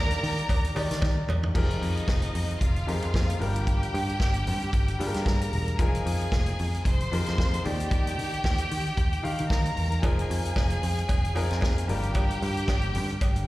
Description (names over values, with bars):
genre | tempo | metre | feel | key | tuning
disco | 113 BPM | 4/4 | swing 56% on 16ths | F dorian | A4 = 439 Hz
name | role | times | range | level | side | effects
clear studio string section | second line | 0.0-13.4 s | Eb4 to C6 | -33 LUFS | equal | plate reverb, slapback echo
warm grand piano | accompaniment | 0.0-13.5 s | Eb3 to F5 | -34 LUFS | left 2 dB | slapback echo
warm horn section | stabs | 0.0-1.2 s | Bb3 to D5 | -38 LUFS | right 3 dB | slapback echo
picked electric bass | bass | 0.0-13.4 s | E1 to Eb3 | -28 LUFS | equal | none
vintage drum kit | drums | 0.1-13.5 s | crash cymbal, hi-hat, kick drum, snare drum, toms | -28 LUFS | equal | none
cowbell | percussion | 0.5-1.4, 10.0-13.4 s | none | -39 LUFS | right 4 dB | slapback echo
room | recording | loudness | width
little or no reverb | live gig heard through the venue's PA, recital hall reverb | -24 LUFS | side -17 dB against mid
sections
0.0-1.6 A section; 1.6-13.5 B section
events
drum fill 1.0-1.6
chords
0.0 Ebmaj7; 1.6 Fm11; 3.4 Gm7; 5.8 Fm11; 7.6 Ebmaj7; 10.0 Fm7; 11.9 Gm7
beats
0.49 1.02 | 1.55 2.08 2.61 3.14 | 3.67 4.20 4.73 5.26 | 5.79 6.32 6.85 7.38 | 7.91 8.44 8.97 9.50 | 10.03 10.56 11.09 11.62 | 12.15 12.69 13.21